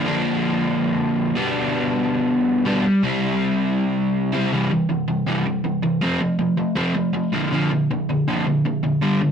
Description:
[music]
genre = punk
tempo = 161 BPM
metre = 4/4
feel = straight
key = C major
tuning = A4 = 440 Hz
[part]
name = crunchy overdriven guitar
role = solo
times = 0.0-9.3 s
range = G2 to E4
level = -18 LUFS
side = equal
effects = none
[sound]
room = wet studio reverb, RT60 0.6 s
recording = rough rehearsal-room recording, warm saturation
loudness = -18 LUFS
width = side -7 dB against mid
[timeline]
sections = 0.0-4.5 A section; 4.5-9.3 B section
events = none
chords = 0.0 Bb; 1.4 G/B; 3.0 C; 6.0 F; 7.3 Bb

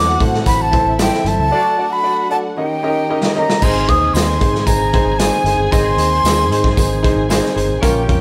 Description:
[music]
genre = uptempo 1960s-style soul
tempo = 114 BPM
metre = 4/4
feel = straight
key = Ab major from 3.6 s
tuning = A4 = 439 Hz
[part]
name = breathy jazz flute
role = melody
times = 0.0-7.3 s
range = G5 to Eb6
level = -20 LUFS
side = equal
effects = none
[part]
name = warm studio string section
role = second line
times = 0.0-8.2 s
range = Eb4 to Ab5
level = -27 LUFS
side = equal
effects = none
[part]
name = warm upright piano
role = accompaniment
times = 0.0-8.2 s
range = Db4 to Eb5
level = -22 LUFS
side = equal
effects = none
[part]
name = percussive tonewheel organ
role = sustained chords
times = 0.0-8.2 s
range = Db3 to Bb4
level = -30 LUFS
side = equal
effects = none
[part]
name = vintage muted fingered electric bass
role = bass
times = 0.0-8.2 s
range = G1 to A2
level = -23 LUFS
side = equal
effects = none
[part]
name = raw garage drum kit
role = drums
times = 0.2-8.2 s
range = crash cymbal, hi-hat, kick drum, snare drum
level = -20 LUFS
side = equal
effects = none
[part]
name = congas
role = percussion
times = 0.5-1.4 s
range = none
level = -31 LUFS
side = equal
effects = none
[part]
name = tambourine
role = percussion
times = 0.5-7.9 s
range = none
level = -35 LUFS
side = equal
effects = none
[part]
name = clear horn section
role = second line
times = 1.5-8.2 s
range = A3 to Eb5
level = -28 LUFS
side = equal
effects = none
[sound]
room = moderate stone room reverb, RT60 1.2 s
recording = band playing live in one room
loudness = -15 LUFS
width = mono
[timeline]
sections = 0.0-3.6 A section; 3.6-8.2 A section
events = break 1.5-3.6; drum fill 2.6-3.6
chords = 0.0 Am; 1.5 D; 2.6 Eb7; 3.6 Ab

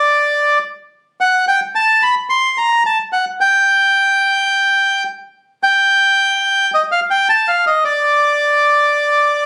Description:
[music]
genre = tango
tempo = 108 BPM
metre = 4/4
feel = rubato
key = G minor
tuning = A4 = 440 Hz
[part]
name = bandoneon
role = solo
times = 0.0-9.5 s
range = D5 to C6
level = -14 LUFS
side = equal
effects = none
[sound]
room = light reverb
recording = recorded on a phone in the room, club reverb, compression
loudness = -14 LUFS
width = mono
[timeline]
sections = 0.0-5.6 A section; 5.6-9.5 B section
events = none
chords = none

